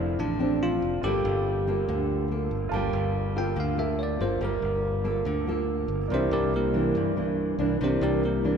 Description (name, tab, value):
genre	bossa nova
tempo	142 BPM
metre	4/4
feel	straight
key	G dorian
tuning	A4 = 440 Hz
part	bell-like tine electric piano	melody	0.0-8.6 s	Bb3 to G5	-29 LUFS	equal	none
part	clear baby grand piano	accompaniment	0.0-8.6 s	D4 to F6	-37 LUFS	right 5 dB	none
part	nylon-string guitar	accompaniment	0.0-8.6 s	G2 to A4	-28 LUFS	right 2 dB	none
part	modern bright fingered electric bass	bass	0.0-8.6 s	F1 to G2	-30 LUFS	left 1 dB	none
room	wet cathedral reverb, RT60 4.4 s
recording	recorded in a church or concert hall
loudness	-24 LUFS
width	side -6 dB against mid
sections	0.0-2.7 A section; 2.7-8.6 B section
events	tine electric piano solo 2.7-8.6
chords	0.0 Dm7/F; 1.0 Gm9; 6.1 C9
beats	0.20 0.62 | 1.04 1.46 1.89 2.31 | 2.73 3.15 3.58 4.00 | 4.42 4.84 5.26 5.69 | 6.11 6.53 6.95 7.38 | 7.80 8.22